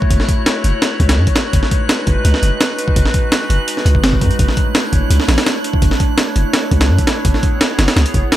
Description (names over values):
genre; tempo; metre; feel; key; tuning
drum and bass, jungle; 168 BPM; 4/4; straight; unclear; A4 = 440 Hz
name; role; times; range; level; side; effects
warbly tape-like pad; sustained chords; 0.0-8.4 s; G#3 to C#5; -21 LUFS; right 1 dB; chorus, built-in reverb
breakbeat sampler-style drum kit; drums; 0.0-8.4 s; hi-hat, kick drum, snare drum; -15 LUFS; equal; none
drifting glass-harmonics texture; texture; 0.0-8.4 s; F#6; -27 LUFS; right 2 dB; chorus, built-in reverb
long sustained 808-style bass; bass; 0.1-8.2 s; F#1 to F#2; -14 LUFS; equal; none
room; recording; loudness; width
little or no reverb; none; -12 LUFS; side -14 dB against mid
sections
0.0-8.4 A section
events
none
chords
0.0 F#m7; 1.5 G#m7/F#; 4.4 Dmaj9/F#; 7.2 C#m7/F#